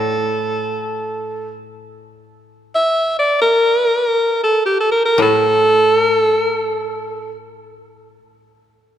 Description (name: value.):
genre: japanese traditional, Japanese chamber music.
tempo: free time.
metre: none.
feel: none.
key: A in sen.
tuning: A4 = 437 Hz.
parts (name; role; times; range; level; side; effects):
bright alto saxophone; melody; 0.0-7.4 s; G4 to E5; -15 LUFS; equal; none.
koto; accompaniment; 0.0-8.2 s; A2; -25 LUFS; left 5 dB; none.
room: moderate church reverb, RT60 2.9 s.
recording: none.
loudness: -14 LUFS.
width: side -10 dB against mid.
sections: 0.0-9.0 A section.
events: none.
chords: none.